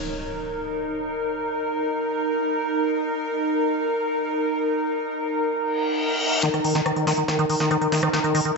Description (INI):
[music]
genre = psychedelic trance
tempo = free time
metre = none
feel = none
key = unclear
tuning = A4 = 437 Hz
[part]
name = evolving wavetable pad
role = sustained chords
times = 0.0-8.6 s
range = Eb4 to Bb4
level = -26 LUFS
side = right 1 dB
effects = chorus, built-in reverb
[part]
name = impact, reverse cymbal and riser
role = sound effects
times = 0.0-1.3, 5.8-8.6 s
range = none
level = -29 LUFS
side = left 2 dB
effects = none
[part]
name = airy breathy pad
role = texture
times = 0.0-8.6 s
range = Eb4 to Bb5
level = -26 LUFS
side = left 1 dB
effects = chorus
[part]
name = liquid acid bass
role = riff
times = 6.4-8.5 s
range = Eb3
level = -22 LUFS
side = equal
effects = chorus, auto-pan, cassette tape, digital delay
[part]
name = big-room dance drum kit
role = drums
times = 6.4-8.5 s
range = hi-hat, rim click, snare drum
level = -29 LUFS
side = equal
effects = high-pass filter on hats, high-pass filter on snare, high-pass filter on cymbals, high-pass filter on toms, high-pass filter on room
[sound]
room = wet lush hall reverb, RT60 1.7 s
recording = nothing above 7.9 kHz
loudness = -21 LUFS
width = side -3 dB against mid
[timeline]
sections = 0.0-6.4 A section; 6.4-8.6 B section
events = impact 0.0-1.3; reverse cymbal 5.8-6.4; build-up 6.4-8.6; drum fill 6.4-8.6; filter sweep on acid bass 6.4-8.6; filter sweep on ambient pad 6.4-8.6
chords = 0.0 Eb5